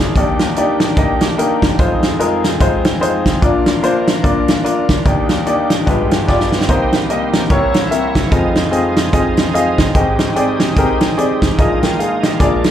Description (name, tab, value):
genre	uptempo gospel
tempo	147 BPM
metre	4/4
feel	swing 59% on 8ths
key	Eb major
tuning	A4 = 440 Hz
part	clear grand piano	accompaniment	0.0-12.7 s	F1 to G5	-16 LUFS	left 2 dB	slapback echo
part	pipe organ, cornet	sustained chords	0.0-12.7 s	Ab3 to Db5	-22 LUFS	right 1 dB	none
part	natural country drum kit	drums	0.2-12.7 s	hi-hat, kick drum, snare drum	-15 LUFS	right 1 dB	none
part	bright tonewheel organ	sustained chords	6.7-12.7 s	Ab3 to Eb5	-24 LUFS	right 6 dB	slow rotary speaker, overdrive, chorus vibrato
room	light reverb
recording	live gig heard through the venue's PA, club reverb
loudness	-12 LUFS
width	side -10 dB against mid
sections	0.0-12.7 A section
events	drum fill 6.3-6.7; grand piano fill 9.3-10.0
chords	0.2 Ebmaj7; 1.8 Fm7; 3.4 Bb; 5.1 Ebmaj7; 5.9 G7b9; 6.7 Cm7; 7.5 C7b9; 8.3 Fm7; 10.0 Abmaj7; 11.6 Bb7sus4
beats	| 0.16 0.56 0.97 1.38 | 1.79 2.20 2.61 3.02 | 3.42 3.83 4.24 4.65 | 5.06 5.46 5.87 6.28 | 6.69 7.10 7.50 7.91 | 8.32 8.73 9.14 9.55 | 9.95 10.36 10.77 11.18 | 11.59 11.99 12.40